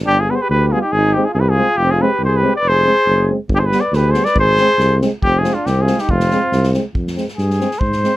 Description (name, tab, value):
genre	balkan folk, Balkan brass band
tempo	139 BPM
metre	2/4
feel	straight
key	F dorian sharp4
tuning	A4 = 441 Hz
part	mellow tuba	bass	0.0-8.0 s	F1 to Ab2	-17 LUFS	equal	none
part	cornet with straight mute	melody	0.1-8.2 s	F4 to D5	-16 LUFS	equal	none
part	mellow flugelhorn	second line	0.1-6.8 s	C4 to B4	-21 LUFS	equal	none
part	mellow euphonium	accompaniment	0.3-8.1 s	G3 to Ab3	-22 LUFS	right 4 dB	none
part	mellow trombone	accompaniment	0.3-8.1 s	B3 to C4	-21 LUFS	left 4 dB	none
part	unplugged drum kit	percussion	3.5-8.2 s	kick drum, snare drum	-24 LUFS	equal	none
room	light reverb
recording	none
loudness	-13 LUFS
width	side -15 dB against mid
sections	0.1-7.0 A section; 7.0-8.2 B section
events	cornet solo 7.0-8.2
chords	0.1 G; 0.9 Ab; 1.8 Fm; 3.5 G; 4.4 Ab; 5.2 Fm